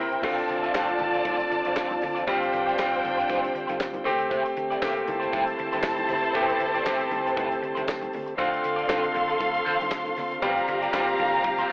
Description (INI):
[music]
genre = disco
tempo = 118 BPM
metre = 4/4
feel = swing 56% on 16ths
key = D minor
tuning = A4 = 443 Hz
[part]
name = dark symphonic string section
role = second line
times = 0.0-11.7 s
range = D4 to C6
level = -27 LUFS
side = equal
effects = tape echo
[part]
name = bright grand piano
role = accompaniment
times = 0.0-11.7 s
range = C3 to G5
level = -28 LUFS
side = equal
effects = none
[part]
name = damped 70s drum kit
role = drums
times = 0.1-11.7 s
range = crash cymbal, handclaps, hi-hat, kick drum, snare drum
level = -33 LUFS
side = equal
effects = none
[part]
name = electric guitar at the edge of break-up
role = accompaniment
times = 0.2-11.7 s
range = C4 to E5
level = -30 LUFS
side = right 1 dB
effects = wah
[part]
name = mellow tonewheel organ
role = sustained chords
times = 0.2-11.7 s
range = D3 to G4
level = -32 LUFS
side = equal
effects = slow rotary speaker
[part]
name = hollow-body short-scale fingered electric bass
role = bass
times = 0.2-11.6 s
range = D2 to D3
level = -41 LUFS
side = equal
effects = none
[part]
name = congas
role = percussion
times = 0.2-11.6 s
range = none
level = -42 LUFS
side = equal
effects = none
[part]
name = tambourine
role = percussion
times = 0.7-11.1 s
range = none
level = -51 LUFS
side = right 1 dB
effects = none
[sound]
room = moderate plate reverb, RT60 1.2 s, studio ambience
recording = telephone sound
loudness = -23 LUFS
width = side -28 dB against mid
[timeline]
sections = 0.2-11.7 A section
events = grand piano fill 0.0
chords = 0.2 Dm7; 2.3 G7sus4/D; 4.1 Am7/D; 8.4 Dm7; 10.4 G7sus4/D